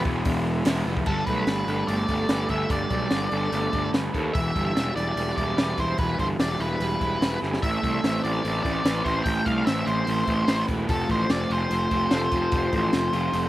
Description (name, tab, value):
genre	indie rock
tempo	147 BPM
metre	4/4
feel	straight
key	unclear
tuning	A4 = 440 Hz
part	crunchy overdriven guitar	riff	0.0-13.5 s	A2 to B4	-27 LUFS	right 1 dB	slapback echo
part	fuzz picked electric bass	bass	0.0-13.5 s	E1 to D#2	-27 LUFS	equal	overdrive
part	compact cocktail drum kit	drums	0.1-13.4 s	crash cymbal, hi-hat, kick drum, snare drum	-28 LUFS	equal	none
part	group handclap	percussion	0.7-0.8 s	none	-37 LUFS	right 4 dB	none
part	octave-fuzz lead guitar	melody	1.1-13.5 s	A4 to G5	-28 LUFS	equal	distortion, slapback echo
room	little or no reverb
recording	recorded outdoors, with no room sound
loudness	-22 LUFS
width	side -15 dB against mid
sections	0.0-1.1 A section; 1.1-13.5 B section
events	drum fill 7.4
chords	0.0 E; 1.1 Gadd9; 4.3 Em7; 7.6 Amadd9; 10.9 F